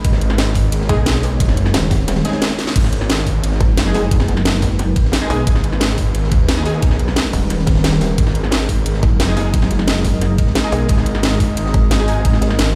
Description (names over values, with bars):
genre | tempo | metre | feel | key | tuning
dark technical drum and bass | 177 BPM | 4/4 | straight | G# minor | A4 = 440 Hz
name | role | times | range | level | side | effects
deep dark ambient pad | sustained chords | 0.0-12.8 s | G#3 to D#5 | -28 LUFS | equal | chorus, built-in reverb, sidechain pumping
detuned saw bass | bass | 0.0-12.8 s | F#1 to D#2 | -20 LUFS | equal | chorus, overdrive
crunchy breakbeat drum kit | drums | 0.0-12.7 s | hi-hat, ride cymbal, snare drum | -30 LUFS | equal | high-pass filter on cymbals, high-pass filter on hats, high-pass filter on snare, high-pass filter on room
drum and bass drum kit | drums | 0.0-12.7 s | crash cymbal, hi-hat, snare drum | -23 LUFS | equal | overdrive
electronic kick drum | drums | 0.0-12.3 s | none | -18 LUFS | equal | none
orchestra-hit-like synth stab | stabs | 0.9-6.7, 9.3-12.2 s | G#3 to G#4 | -27 LUFS | equal | built-in reverb, phaser, delay
pulsing pluck wobble bass | bass | 0.9-12.6 s | D#1 to B1 | -19 LUFS | equal | chorus
room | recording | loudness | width
little or no reverb | played on a big sound system in a bare room, large studio reverb | -16 LUFS | mono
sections
0.0-2.8 A section; 2.8-12.8 A section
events
drop 0.0-2.8, 2.8-12.8; kick drops out 2.1-2.8; drum fill 2.6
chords
0.0 G#m